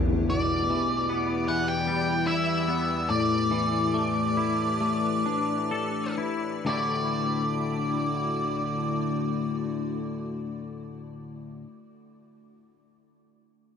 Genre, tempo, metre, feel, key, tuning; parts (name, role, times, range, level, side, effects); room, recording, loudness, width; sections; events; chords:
rock; 62-78 BPM; 4/4; straight; D major; A4 = 440 Hz
icy glass pad; sustained chords; 0.0-11.3 s; E2 to D5; -32 LUFS; equal; chorus, built-in reverb
twangy electric guitar; arpeggios; 0.0-11.7 s; D2 to A4; -29 LUFS; left 4 dB; ensemble chorus, slapback echo
octave-fuzz lead guitar; melody; 0.3-11.3 s; D5 to G5; -29 LUFS; right 1 dB; distortion, slapback echo
light reverb, small room reverb; dark, warm production; -24 LUFS; side -7 dB against mid
0.0-6.7 A section; 6.7-10.6 B section
slowing down 0.0-6.7
0.0 Em7; 3.1 A7sus4; 6.7 Dadd9